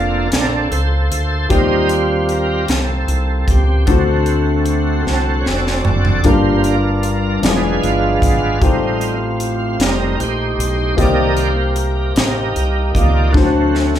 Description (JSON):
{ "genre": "slow gospel", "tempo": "51 BPM (dotted quarters)", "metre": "6/8", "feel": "straight", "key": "unclear", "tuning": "A4 = 440 Hz", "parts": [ { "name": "clear grand piano", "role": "accompaniment", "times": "0.0-14.0 s", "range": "G2 to D5", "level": "-20 LUFS", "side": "left 4 dB", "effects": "none" }, { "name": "bright tonewheel organ", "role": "sustained chords", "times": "0.0-14.0 s", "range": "Eb3 to F5", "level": "-19 LUFS", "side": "right 3 dB", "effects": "slow rotary speaker, overdrive, chorus vibrato" }, { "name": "fingered electric bass", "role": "bass", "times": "0.0-14.0 s", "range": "E1 to Eb2", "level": "-19 LUFS", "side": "equal", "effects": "none" }, { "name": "crisp fusion drum kit", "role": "drums", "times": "0.3-14.0 s", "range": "hi-hat, kick drum, snare drum, toms", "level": "-18 LUFS", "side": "equal", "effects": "none" } ], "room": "moderate large studio reverb, RT60 0.8 s", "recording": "band playing live in one room", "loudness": "-13 LUFS", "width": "side -10 dB against mid", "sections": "0.0-14.0 A section", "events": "tonewheel organ solo 0.0-14.0; drum fill 5.1-6.2, 13.3-14.0", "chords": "0.0 Bbmaj7/F; 1.5 Eb6; 3.9 D7; 6.2 Gm7; 7.4 E7b9; 8.6 Am7b5; 11.0 Cm7; 13.3 D7", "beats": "0.32 | 1.50 2.69 | 3.87 5.06 | 6.24 7.43 | 8.61 9.80 | 10.98 12.16 | 13.34" }